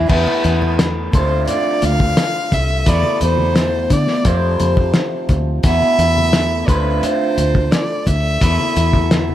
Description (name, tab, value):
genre	psychedelic rock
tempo	86 BPM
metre	4/4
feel	straight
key	unclear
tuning	A4 = 440 Hz
part	electric guitar through a small old amp	riff	0.0-9.3 s	E2 to F4	-20 LUFS	right 1 dB	phaser
part	fingered electric bass	bass	0.0-9.3 s	C2 to D3	-18 LUFS	equal	none
part	warm violin	melody	0.1-9.3 s	B4 to F5	-20 LUFS	equal	slapback echo
part	cloth-damped thuddy drum kit	drums	0.1-9.3 s	crash cymbal, hi-hat, kick drum, snare drum	-18 LUFS	equal	none
part	congas	percussion	0.3-9.3 s	none	-28 LUFS	left 4 dB	none
room	light reverb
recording	none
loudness	-13 LUFS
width	side -12 dB against mid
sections	0.1-9.3 A section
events	none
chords	0.1 Esus4; 1.1 Dm7; 2.9 Esus4; 4.3 F; 5.6 Esus4; 6.7 Dm7; 8.4 Esus4